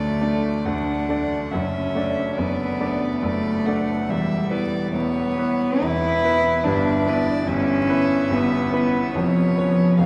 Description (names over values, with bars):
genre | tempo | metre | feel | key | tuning
classical, slow romantic movement for piano trio | 71 BPM | 3/4 | uneven beats, rubato | unclear | A4 = 440 Hz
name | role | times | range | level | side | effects
rich violin | melody | 0.0-10.1 s | B4 to F#5 | -32 LUFS | equal | none
warm cello | second line | 0.0-10.1 s | E#3 to E4 | -24 LUFS | equal | none
clear grand piano | accompaniment | 0.0-10.1 s | E1 to D5 | -26 LUFS | equal | none
room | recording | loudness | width
wet cathedral reverb, RT60 6.2 s | recorded in a church or concert hall, vinyl crackle | -22 LUFS | mono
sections
0.0-10.1 A section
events
none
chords
0.0 D; 1.5 D/F#; 4.1 Em; 6.6 Em/G; 9.1 C#7/E#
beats
0.65 | 1.52 2.37 3.22 | 4.08 4.93 5.81 | 6.65 7.47 8.30 | 9.15 9.99